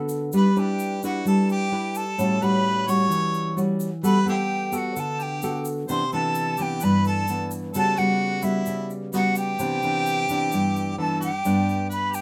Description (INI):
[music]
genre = bossa nova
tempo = 130 BPM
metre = 4/4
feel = straight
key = G major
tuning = A4 = 439 Hz
[part]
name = nylon-string guitar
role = accompaniment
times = 0.0-12.2 s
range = G2 to B4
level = -26 LUFS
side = equal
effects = none
[part]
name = egg shaker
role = percussion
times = 0.1-12.2 s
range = none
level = -42 LUFS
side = equal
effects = none
[part]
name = hollow concert flute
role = melody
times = 0.4-12.2 s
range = E5 to C#6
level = -28 LUFS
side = equal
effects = none
[part]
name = bright harmonica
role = second line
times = 0.4-12.2 s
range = B3 to C#5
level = -35 LUFS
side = equal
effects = none
[sound]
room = moderate studio reverb, RT60 0.6 s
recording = none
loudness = -24 LUFS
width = mono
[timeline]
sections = 0.0-11.5 A section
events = none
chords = 0.3 Gmaj13; 2.2 A13; 4.0 Gmaj9; 5.9 Cmaj9; 7.7 A13/C#; 9.6 Cmaj9; 11.5 G